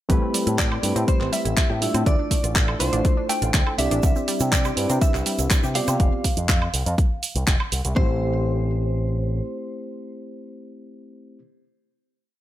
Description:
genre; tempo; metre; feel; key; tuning
nu-disco, nu disco; 122 BPM; 4/4; straight; A minor; A4 = 440 Hz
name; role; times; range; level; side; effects
reed electric piano; accompaniment; 0.1-11.4 s; A3 to E5; -28 LUFS; equal; spring reverb, sidechain pumping, digital delay
wide unison pluck; arpeggios; 0.1-8.2 s; G3 to A4; -32 LUFS; left 3 dB; vintage 12-bit sampler grit, sidechain pumping, ping-pong delay
picked electric bass with an envelope filter; bass; 0.1-9.4 s; F1 to C3; -24 LUFS; equal; sidechain pumping
electronic kick drum; drums; 0.1-8.1 s; none; -21 LUFS; equal; none
house drum kit; drums; 0.1-7.9 s; handclaps, hi-hat, shaker, woodblock; -26 LUFS; right 2 dB; none
direct-recorded clean electric guitar; melody; 0.6-11.4 s; C5 to G5; -30 LUFS; equal; analog chorus, ping-pong delay
egg shaker; percussion; 4.0-6.0 s; none; -34 LUFS; right 10 dB; none
room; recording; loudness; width
little or no reverb; none; -19 LUFS; side -13 dB against mid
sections
0.1-8.0 drop; 8.0-11.9 final chord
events
drop 0.1-8.0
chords
0.1 Am7; 2.1 Dm7; 4.0 Cmaj7; 6.0 F5; 8.0 Am7

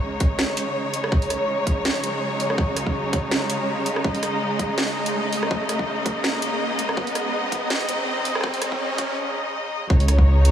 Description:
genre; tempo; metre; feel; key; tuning
half-time drum and bass; 164 BPM; 4/4; swing 56% on 16ths, half-time; unclear; A4 = 440 Hz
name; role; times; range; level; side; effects
clear studio string section; sustained chords; 0.0-10.5 s; C#3 to D#5; -24 LUFS; equal; sidechain pumping
riser; sound effects; 0.6-9.2 s; none; -30 LUFS; right 1 dB; none
drum and bass drum kit; drums; 0.2-10.5 s; hi-hat, rim click, snare drum; -28 LUFS; right 1 dB; overdrive
electronic kick drum; drums; 0.2-10.2 s; none; -21 LUFS; equal; overdrive
dark detuned saw bass; bass; 9.9-10.5 s; C#2; -15 LUFS; equal; none
room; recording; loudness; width
light reverb, digital ambience; high-pass filter; -20 LUFS; side -10 dB against mid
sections
0.0-9.9 A section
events
build-up 0.0-9.9; filter sweep 0.0-9.9; riser 0.6-9.2; break 9.2-9.9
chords
0.0 C#5

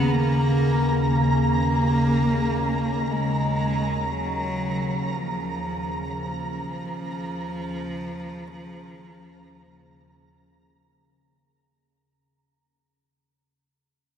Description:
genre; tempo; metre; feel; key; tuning
dark ambient drone; free time; none; none; Eb minor; A4 = 440 Hz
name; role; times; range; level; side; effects
warm cello; melody; 0.0-11.1 s; F3 to Cb4; -28 LUFS; equal; shimmer reverb, ping-pong delay
organ-like drone; drone; 0.0-12.2 s; Eb2 to Db3; -24 LUFS; equal; ensemble chorus, built-in reverb
flickering grainy texture; texture; 0.0-12.2 s; Bb5; -30 LUFS; right 1 dB; built-in reverb, shimmer reverb
room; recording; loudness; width
wet cathedral reverb, RT60 5.1 s; none; -22 LUFS; side -8 dB against mid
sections
0.0-12.1 A section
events
fade-out 1.5-12.1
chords
0.0 Eb7(no3)

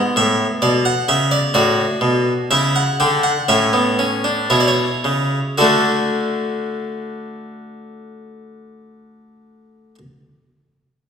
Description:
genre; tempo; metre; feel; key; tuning
classical, baroque-style 3-part fugue for harpsichord; 55-68 BPM; 4/4; straight; D major; A4 = 439 Hz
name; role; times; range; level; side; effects
harpsichord; solo; 0.0-10.0 s; A2 to G5; -15 LUFS; equal; none
room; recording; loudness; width
wet recital hall reverb, RT60 1.6 s; recorded in a church or concert hall; -15 LUFS; side -7 dB against mid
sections
0.0-5.6 A section; 5.6-10.0 B section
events
slowing down 0.0-5.6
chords
0.0 E7(no3); 1.6 D/A; 3.5 A; 5.6 D

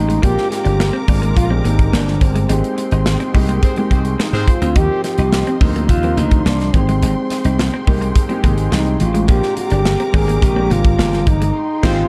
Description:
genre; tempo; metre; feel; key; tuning
polished 1980s jazz-funk pop; 106 BPM; 4/4; straight; unclear; A4 = 439 Hz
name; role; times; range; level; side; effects
mellow French horn; melody; 0.0-12.1 s; C4 to Ab4; -23 LUFS; equal; none
warm concert grand piano; accompaniment; 0.0-12.1 s; F3 to Bb4; -26 LUFS; equal; lush chorus
dark studio string section; sustained chords; 0.0-12.1 s; Ab3 to D6; -32 LUFS; equal; none
slap bass; bass; 0.0-12.0 s; G1 to Ab2; -19 LUFS; equal; none
clean electric guitar; riff; 0.1-11.5 s; Ab3 to Eb4; -27 LUFS; equal; lush chorus
modern studio drum kit; drums; 0.1-12.0 s; crash cymbal, hi-hat, kick drum, snare drum; -19 LUFS; equal; none
clear horn section; second line; 3.6-4.7, 11.8-12.0 s; C4 to C5; -30 LUFS; equal; delay
congas; percussion; 4.8-11.4 s; none; barely audible; none; none
room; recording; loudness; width
studio reverb; dark, warm production; -16 LUFS; mono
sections
0.0-12.1 A section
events
band accent 2.5-4.8, 11.6-12.1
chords
0.2 Bb7; 2.5 Abmaj7; 4.8 Eb6; 6.7 Abmaj7; 9.3 Bb7; 11.6 Abmaj7

